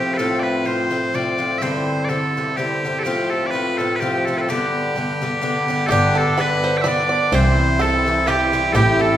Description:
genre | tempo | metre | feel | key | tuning
celtic folk, Celtic waltz | 126 BPM | 3/4 | swing 54% on 8ths | G mixolydian | A4 = 440 Hz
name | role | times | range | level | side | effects
loud bright bagpipes | melody | 0.0-9.2 s | G4 to G5 | -21 LUFS | right 1 dB | none
Irish bouzouki | accompaniment | 0.0-9.2 s | G2 to F4 | -20 LUFS | left 1 dB | none
bluegrass banjo | second line | 5.9-9.2 s | G4 to D5 | -22 LUFS | right 3 dB | none
warm double bass | bass | 5.9-9.2 s | G1 to C2 | -21 LUFS | right 1 dB | none
room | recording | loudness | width
wet recital hall reverb, RT60 1.7 s | recorded in a church or concert hall | -17 LUFS | side -11 dB against mid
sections
0.0-5.9 A section; 5.9-9.2 A section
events
none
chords
0.0 F; 1.6 Cadd9; 3.1 F; 4.5 G; 7.3 C

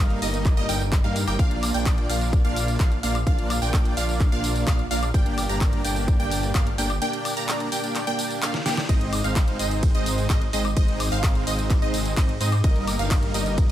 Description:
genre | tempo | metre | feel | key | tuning
EDM, festival progressive house | 128 BPM | 4/4 | straight | Eb major | A4 = 440 Hz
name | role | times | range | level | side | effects
wide unison pluck | arpeggios | 0.0-13.7 s | Eb5 to Bb5 | -31 LUFS | right 1 dB | phaser, sidechain pumping, dub echo
dense compressed supersaw | riff | 0.0-13.7 s | G3 to Bb5 | -27 LUFS | right 1 dB | sidechain pumping, dub echo
detuned saw bass | bass | 0.0-13.7 s | G1 to Ab2 | -27 LUFS | equal | sidechain pumping
pop drum kit | drums | 0.1-13.7 s | handclaps, hi-hat, ride cymbal, snare drum, tambourine, woodblock | -30 LUFS | equal | overdrive
electronic kick drum | drums | 0.5-13.7 s | none | -21 LUFS | equal | none
room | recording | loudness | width
little or no reverb | none | -20 LUFS | side -12 dB against mid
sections
0.0-13.7 A section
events
break 7.0-8.9; drum fill 8.5-8.9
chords
0.0 Eb/G; 1.4 Bb; 5.1 Gm; 8.9 Ab; 12.6 Eb/G

